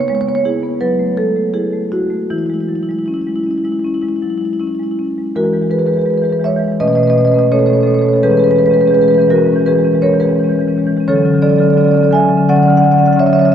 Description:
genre	classical, contemporary piece for solo marimba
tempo	76-86 BPM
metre	4/4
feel	rubato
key	unclear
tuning	A4 = 440 Hz
part	marimba with medium mallets	solo	0.0-13.5 s	B2 to G#5	-11 LUFS	equal	none
room	wet church reverb, RT60 3.5 s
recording	dark, warm production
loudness	-11 LUFS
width	side -9 dB against mid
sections	0.0-5.4 A section; 5.4-13.5 B section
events	none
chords	0.0 C#m7; 0.8 F#m9; 2.3 E6; 6.8 B9; 8.2 E6; 11.1 Dmaj7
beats	0.10 0.81 1.54 | 2.30 3.08 3.85 4.61 | 5.36 6.09 6.80 7.52 | 8.23 8.94 9.66 10.38 | 11.08 11.78 12.49 13.20

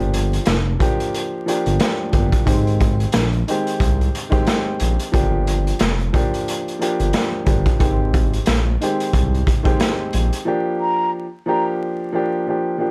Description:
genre	hip hop, boom-bap hip-hop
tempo	90 BPM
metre	4/4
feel	swing 57% on 16ths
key	G phrygian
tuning	A4 = 440 Hz
part	dark upright piano	accompaniment	0.0-12.9 s	Eb3 to G4	-24 LUFS	equal	high-pass filter, low-pass filter
part	smooth synth bass	bass	0.0-10.3 s	F1 to C2	-22 LUFS	equal	none
part	raw garage drum kit	drums	0.0-10.5 s	hi-hat, kick drum, snare drum	-22 LUFS	equal	none
part	breathy mellow concert flute	melody	10.8-11.6 s	Bb5	-23 LUFS	equal	high-pass filter, low-pass filter, slapback echo
room	light reverb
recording	vinyl crackle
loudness	-19 LUFS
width	mono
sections	0.0-10.5 A section; 10.5-12.9 B section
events	none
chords	0.0 Gm7; 2.5 Abmaj7; 5.1 Gm7; 7.8 Abmaj7; 10.5 Gm7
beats	0.47 1.14 1.80 | 2.47 3.13 3.80 4.47 | 5.13 5.80 6.47 7.13 | 7.80 8.47 9.13 9.80 | 10.47 11.13 11.80 12.47

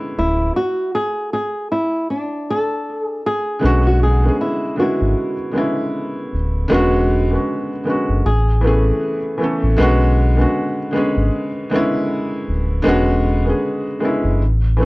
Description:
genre	lo-fi hip hop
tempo	78 BPM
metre	4/4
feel	swing 57% on 16ths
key	B dorian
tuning	A4 = 441 Hz
part	felt-muted upright piano	accompaniment	0.0-14.9 s	D3 to A4	-18 LUFS	equal	cassette tape
part	flamenco guitar	melody	0.2-9.4 s	D4 to A4	-21 LUFS	equal	plate reverb
part	sub bass with octave	bass	0.2-14.9 s	D1 to B1	-16 LUFS	equal	tube saturation
room	light reverb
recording	worn, warbling old tape, cassette tape, warbly pitch drift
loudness	-16 LUFS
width	side -22 dB against mid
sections	0.0-3.6 A section; 3.6-14.9 B section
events	stop 0.6-3.6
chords	0.0 Bm69; 0.6 N.C.; 3.6 Bm69; 6.7 E13; 8.2 Amaj9; 9.8 Bm69; 12.9 E13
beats	| 0.55 1.32 2.09 2.86 | 3.63 4.40 5.17 5.94 | 6.71 7.47 8.24 9.01 | 9.78 10.55 11.32 12.09 | 12.86 13.63 14.40

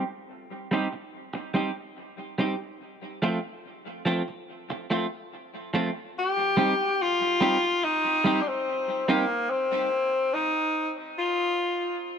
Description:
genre	reggae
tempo	72 BPM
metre	4/4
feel	straight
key	C dorian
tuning	A4 = 441 Hz
part	semi-hollow electric guitar	accompaniment	0.0-9.2 s	F3 to G4	-28 LUFS	right 2 dB	lush chorus, low-pass filter, dub echo
part	warm tenor saxophone	melody	6.2-12.0 s	Bb3 to G4	-24 LUFS	left 2 dB	dub echo
room	moderate plate reverb, RT60 3.6 s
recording	none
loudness	-24 LUFS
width	side -7 dB against mid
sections	0.0-6.2 A section; 6.2-12.2 B section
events	break 9.5-12.2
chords	0.0 Cm; 2.8 F; 6.2 Cm; 9.5 N.C.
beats	0.29 1.12 1.96 | 2.80 3.64 4.48 5.31 | 6.15 6.99 7.83 8.66 | 9.50 10.34 11.17

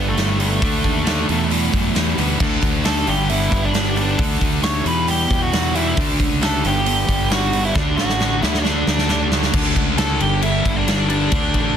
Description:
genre	quiet-loud alternative rock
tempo	134 BPM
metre	4/4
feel	straight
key	D major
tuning	A4 = 440 Hz
part	dark smooth lead guitar	melody	0.0-11.8 s	A3 to C#6	-23 LUFS	right 2 dB	overdrive, plate reverb, digital delay
part	picked steel-string acoustic guitar	arpeggios	0.0-9.5 s	E2 to D4	-29 LUFS	right 10 dB	plate reverb, digital delay
part	thick fuzz guitar	riff	0.0-11.8 s	E2 to D4	-21 LUFS	left 1 dB	distortion
part	fuzz fingered electric bass	bass	0.0-11.8 s	G1 to F#2	-22 LUFS	equal	overdrive
part	big rock drum kit	drums	0.2-11.7 s	crash cymbal, hi-hat, kick drum, snare drum	-21 LUFS	equal	none
room	light reverb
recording	dense, heavily limited modern master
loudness	-16 LUFS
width	side -8 dB against mid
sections	0.0-9.5 A section; 9.5-11.8 A section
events	drum fill 7.8-9.5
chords	0.0 G; 0.6 D5; 1.3 Em; 2.4 D5; 3.1 G; 4.2 D5; 4.9 Em; 6.0 D5; 6.6 G; 7.8 D; 8.4 D5; 10.2 G5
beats	0.17 | 0.62 1.07 1.51 1.96 | 2.40 2.85 3.30 3.74 | 4.19 4.64 5.08 5.53 | 5.97 6.42 6.87 7.31 | 7.76 8.20 8.65 9.10 | 9.54 9.99 10.43 10.88 | 11.33

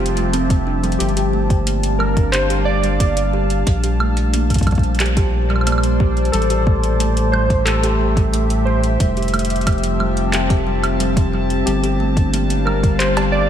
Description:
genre	IDM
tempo	90 BPM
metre	4/4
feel	straight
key	G dorian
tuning	A4 = 440 Hz
part	warbly lo-fi synth keys	melody	0.0-13.5 s	F4 to D5	-23 LUFS	right 1 dB	chorus, analog delay
part	warbly tape-like pad	sustained chords	0.0-13.5 s	A2 to A5	-22 LUFS	left 1 dB	chorus, built-in reverb, phaser
part	kalimba	arpeggios	0.0-13.3 s	F3 to G4	-24 LUFS	equal	tape echo
part	round analog bass	bass	0.0-13.5 s	F1 to Bb1	-19 LUFS	equal	none
part	electro analog drum machine	drums	0.1-13.3 s	cowbell, handclaps, hi-hat, woodblock	-25 LUFS	right 2 dB	analog delay
part	electronic kick drum	drums	0.5-13.0 s	none	-17 LUFS	equal	none
room	moderate lush hall reverb, RT60 1.9 s, digital ambience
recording	dreamy mix soaked in reverb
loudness	-15 LUFS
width	side -10 dB against mid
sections	0.0-13.5 A section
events	none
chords	0.0 Fmaj7; 1.0 Gm7; 3.7 Bbmaj7; 6.3 Am7; 9.0 Fmaj7; 11.7 Gm7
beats	0.34 | 1.00 1.67 2.33 3.00 | 3.67 4.33 5.00 5.67 | 6.33 7.00 7.67 8.34 | 9.00 9.67 10.34 11.00 | 11.67 12.34 13.00

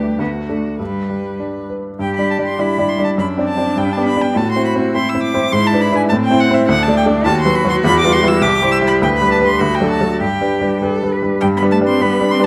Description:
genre	quick classical-period movement for piano trio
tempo	102 BPM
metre	2/4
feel	straight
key	G major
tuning	A4 = 441 Hz
part	rich violin	melody	0.0-12.5 s	F#4 to E6	-22 LUFS	equal	none
part	rich cello	second line	0.0-12.4 s	G3 to B4	-23 LUFS	equal	none
part	clear baby grand piano	accompaniment	0.0-12.5 s	C2 to D5	-18 LUFS	equal	none
room	moderate recital hall reverb, RT60 1.3 s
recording	close, detailed microphones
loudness	-16 LUFS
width	mono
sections	0.0-2.0 A section; 2.0-11.4 B section; 11.4-12.5 B section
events	none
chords	0.2 D; 0.8 G; 2.0 G5; 3.2 D7/F#; 3.8 G; 4.4 Am; 5.5 E7/G#; 6.1 Am; 6.7 D5; 7.3 B/D#; 7.8 Em; 8.4 C; 9.0 G/D; 9.6 D; 10.2 G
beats	0.20 | 0.80 1.40 | 2.00 2.60 | 3.19 3.78 | 4.36 4.94 | 5.53 6.11 | 6.68 7.26 | 7.84 8.43 | 9.01 9.61 | 10.21 10.82 | 11.42 12.01

